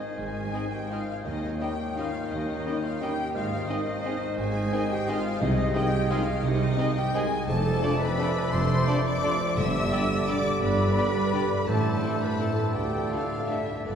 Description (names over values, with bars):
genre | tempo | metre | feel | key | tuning
classical, orchestral ballroom waltz | 156-189 BPM | 3/4 | rubato | Ab major | A4 = 437 Hz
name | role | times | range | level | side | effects
rich studio violin section | melody | 0.0-14.0 s | D5 to E6 | -36 LUFS | left 4 dB | none
clear oboe | second line | 0.0-14.0 s | C5 to Ab5 | -39 LUFS | left 1 dB | none
mellow clarinet | second line | 0.0-14.0 s | G4 to Db5 | -36 LUFS | right 1 dB | none
mellow flute section | second line | 0.0-14.0 s | D5 to E6 | -35 LUFS | left 2 dB | none
mellow bassoon | accompaniment | 0.0-14.0 s | C3 to E3 | -34 LUFS | equal | none
rich chamber viola section | accompaniment | 0.0-14.0 s | D4 to E5 | -35 LUFS | equal | none
clear chamber double bass section | bass | 0.2-14.0 s | F1 to Eb2 | -30 LUFS | right 2 dB | none
warm symphonic cello section | bass | 0.2-14.0 s | D2 to C3 | -32 LUFS | right 1 dB | none
bright chamber violin section | second line | 0.5-13.6 s | A3 to A4 | -41 LUFS | left 2 dB | none
clear trombone section | sustained chords | 0.5-13.6 s | C3 to A3 | -39 LUFS | right 2 dB | none
mellow French horn section | sustained chords | 0.5-13.6 s | C4 to G4 | -36 LUFS | left 3 dB | none
clear trumpet | stabs | 0.5-13.6 s | A4 to Eb5 | -38 LUFS | right 1 dB | none
timpani | percussion | 5.4-5.9, 9.6-10.1, 13.9 s | G2 to C3 | -37 LUFS | left 1 dB | none
room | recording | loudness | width
wet cathedral reverb, RT60 6.2 s | heard from further back in the room | -24 LUFS | side -8 dB against mid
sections
0.0-14.0 A section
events
none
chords
0.0 Ab; 1.2 Eb7; 3.4 Ab; 5.4 Ab/C; 7.5 Dm7/F; 9.6 G; 11.7 Am; 12.8 Dm